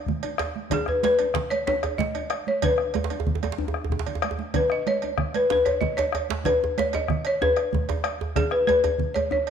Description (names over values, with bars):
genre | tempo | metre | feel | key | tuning
west african traditional, West African drum ensemble | 125 BPM (dotted quarters) | 12/8 | straight | B major pentatonic | A4 = 440 Hz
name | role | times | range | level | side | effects
balafon | melody | 0.0-9.5 s | G#4 to D#5 | -23 LUFS | left 1 dB | none
bombo | percussion | 0.1-9.4 s | none | -30 LUFS | left 4 dB | none
congas | percussion | 0.1-9.3 s | none | -32 LUFS | right 11 dB | none
cowbell | percussion | 0.2-9.5 s | none | -34 LUFS | right 13 dB | none
djembe | percussion | 0.2-9.5 s | none | -35 LUFS | left 6 dB | none
djembe | percussion | 0.4-9.3 s | none | -30 LUFS | right 3 dB | none
room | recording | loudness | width
wet echo chamber reverb, RT60 1.4 s, small room reverb | 1960s-style stereo with parts hard left and right | -22 LUFS | side -8 dB against mid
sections
0.0-9.5 A section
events
drum fill 3.9-4.5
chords
none